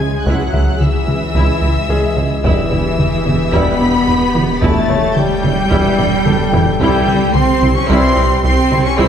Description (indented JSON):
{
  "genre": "cinematic, hybrid orchestral and electronic film score",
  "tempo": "110 BPM",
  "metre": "4/4",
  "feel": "straight",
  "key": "unclear",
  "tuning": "A4 = 439 Hz",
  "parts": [
    { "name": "clear symphonic violin section", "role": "melody", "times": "0.0-9.1 s", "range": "E6 to C#7", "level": "-26 LUFS", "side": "left 3 dB", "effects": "none" },
    { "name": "warm symphonic violin section", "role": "second line", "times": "0.0-9.1 s", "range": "E5 to C#6", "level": "-22 LUFS", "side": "left 2 dB", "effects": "none" },
    { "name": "rich studio viola section", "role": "accompaniment", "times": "0.0-9.1 s", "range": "B3 to G#4", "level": "-23 LUFS", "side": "equal", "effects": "none" },
    { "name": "warm French horn section", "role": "sustained chords", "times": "0.0-9.1 s", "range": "E3 to C#4", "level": "-20 LUFS", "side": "left 2 dB", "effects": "none" },
    { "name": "plucky analog bass", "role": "riff", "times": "0.0-9.1 s", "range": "C2 to E3", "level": "-20 LUFS", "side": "right 1 dB", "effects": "none" },
    { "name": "mellow tuba", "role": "bass", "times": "0.0-9.1 s", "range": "E1 to C#2", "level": "-23 LUFS", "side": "right 2 dB", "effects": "none" },
    { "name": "rich symphonic cello section", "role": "bass", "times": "0.0-9.1 s", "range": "E3 to C#4", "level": "-21 LUFS", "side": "right 3 dB", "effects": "none" },
    { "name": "warm sub bass", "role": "bass", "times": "0.0-9.1 s", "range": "E1 to C#2", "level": "-23 LUFS", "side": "equal", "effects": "none" },
    { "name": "warm symphonic double bass section", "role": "bass", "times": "0.0-9.1 s", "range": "C2 to E2", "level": "-23 LUFS", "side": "right 2 dB", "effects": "none" },
    { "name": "bright baby grand piano", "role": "texture", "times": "0.0-9.1 s", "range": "G#3 to E5", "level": "-26 LUFS", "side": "left 3 dB", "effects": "ping-pong delay" },
    { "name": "warm trombone section", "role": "sustained chords", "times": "0.3-9.1 s", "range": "E3 to G#3", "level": "-26 LUFS", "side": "equal", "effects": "none" },
    { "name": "taiko ensemble", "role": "drums", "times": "0.3-9.1 s", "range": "none", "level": "-20 LUFS", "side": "equal", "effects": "none" }
  ],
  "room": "wet scoring stage reverb, RT60 2.0 s",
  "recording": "heard from further back in the room",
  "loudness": "-12 LUFS",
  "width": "side -8 dB against mid",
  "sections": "0.0-9.1 A section",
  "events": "drum fill 6.0-6.8",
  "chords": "0.0 C#m; 2.4 Em; 6.8 C"
}